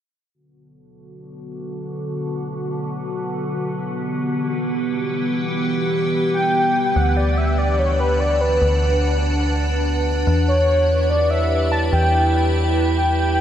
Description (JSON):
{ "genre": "IDM", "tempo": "free time", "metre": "none", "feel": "none", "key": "unclear", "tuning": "A4 = 439 Hz", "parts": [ { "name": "icy glass pad", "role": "sustained chords", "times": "1.3-13.4 s", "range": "D3 to F#5", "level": "-22 LUFS", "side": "equal", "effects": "chorus, built-in reverb" }, { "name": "warm velvety synth lead", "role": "melody", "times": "6.3-13.4 s", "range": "B4 to A5", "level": "-20 LUFS", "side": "equal", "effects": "chorus, cassette tape, tape echo" }, { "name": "metallic FM bass", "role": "bass", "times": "7.0-13.4 s", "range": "D2 to E2", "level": "-19 LUFS", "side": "equal", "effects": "none" } ], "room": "wet huge ambient reverb, RT60 7.5 s", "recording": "dreamy mix soaked in reverb, low-pass filter", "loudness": "-17 LUFS", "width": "side -10 dB against mid", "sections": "0.3-7.0 A section; 7.0-13.4 B section", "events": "filter sweep 0.3-7.0", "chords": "0.3 D6; 3.6 Em; 7.0 D6; 10.3 Em" }